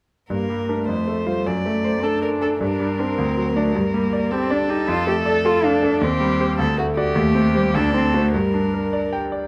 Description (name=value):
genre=quick classical-period movement for piano trio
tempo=105 BPM (dotted quarters)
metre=6/8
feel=straight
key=G minor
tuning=A4 = 440 Hz
part: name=muted violin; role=melody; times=0.3-9.2 s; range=F#4 to D5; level=-29 LUFS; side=equal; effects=none
part: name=muted cello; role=second line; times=0.3-8.9 s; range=F#3 to A4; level=-25 LUFS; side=equal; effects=none
part: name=bright concert grand piano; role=accompaniment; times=0.3-9.5 s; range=D2 to G5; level=-24 LUFS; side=equal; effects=none
room=moderate recital hall reverb, RT60 1.6 s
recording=close, detailed microphones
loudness=-20 LUFS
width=mono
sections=0.3-9.5 A section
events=none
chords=0.3 Gm; 0.9 F; 1.5 D7/F#; 2.6 Gm; 3.2 D7; 3.8 Gm; 4.9 Dm/F; 6.0 Cm/Eb; 6.6 D; 7.2 Cm/Eb; 7.7 D7; 8.3 Gm